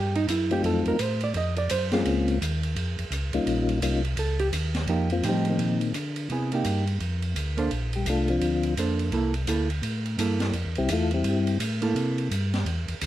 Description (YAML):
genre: soul jazz organ trio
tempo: 170 BPM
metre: 4/4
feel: swing 62% on 8ths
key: F mixolydian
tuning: A4 = 440 Hz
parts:
  - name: hollow-body jazz guitar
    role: accompaniment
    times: 0.0-12.3 s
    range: F3 to Eb5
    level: -28 LUFS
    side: right 3 dB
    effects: none
  - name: mellow tonewheel organ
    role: bass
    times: 0.0-13.1 s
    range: Bb1 to D3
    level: -27 LUFS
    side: equal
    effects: slow rotary speaker
  - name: open jazz drum kit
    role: drums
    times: 0.2-13.1 s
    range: hi-hat, ride cymbal, snare drum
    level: -33 LUFS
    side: right 3 dB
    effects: none
  - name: percussive tonewheel organ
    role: melody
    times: 0.5-11.6 s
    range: Eb3 to A4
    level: -26 LUFS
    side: left 3 dB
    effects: slow rotary speaker, chorus vibrato
room: little or no reverb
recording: none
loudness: -24 LUFS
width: side -13 dB against mid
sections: 0.0-4.9 A section; 4.9-13.1 A section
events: hollow-body jazz guitar solo 0.0-4.9; tonewheel organ solo 4.9-13.1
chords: 0.0 A7(no3) (rootless); 0.6 F7b9; 2.1 Bbm9; 3.5 Eb9; 4.9 F9sus4; 6.3 Cm7; 7.0 F6; 7.7 Bbmaj9; 9.1 C13; 10.5 Fmaj9; 11.9 C13